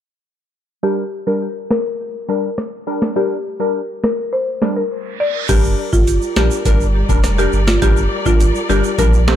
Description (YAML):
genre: dancehall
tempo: 103 BPM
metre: 4/4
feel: straight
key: unclear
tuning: A4 = 440 Hz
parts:
  - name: buzzing marimba with medium hard mallets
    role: melody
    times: 0.8-9.4 s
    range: F4 to D5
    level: -20 LUFS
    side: left 2 dB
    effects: ping-pong delay
  - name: wavetable chord stab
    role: accompaniment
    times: 0.8-9.2 s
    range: G3 to Bb4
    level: -22 LUFS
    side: left 1 dB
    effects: phaser
  - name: booming analog drum machine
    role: drums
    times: 1.7-9.4 s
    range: crash cymbal, hi-hat, kick drum, rim click, snare drum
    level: -18 LUFS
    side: equal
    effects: none
  - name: reverse cymbal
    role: sound effects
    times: 5.1-5.5 s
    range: none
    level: -28 LUFS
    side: right 9 dB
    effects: none
  - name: warm studio string section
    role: sustained chords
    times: 5.5-9.4 s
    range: G3 to D5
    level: -25 LUFS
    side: left 1 dB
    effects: sidechain pumping
  - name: saturated sub bass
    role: bass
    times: 5.5-9.4 s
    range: F1 to Bb1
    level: -17 LUFS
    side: equal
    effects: none
  - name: egg shaker and timbales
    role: percussion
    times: 5.5-9.4 s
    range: none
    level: -28 LUFS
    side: right 13 dB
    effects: none
room: digital ambience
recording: low-pass filter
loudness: -15 LUFS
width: side -10 dB against mid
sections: 0.8-5.5 A section; 5.5-9.4 B section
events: filter sweep 0.8-5.5; break 4.9-5.5; reverse cymbal 5.1-5.5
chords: 0.8 Gm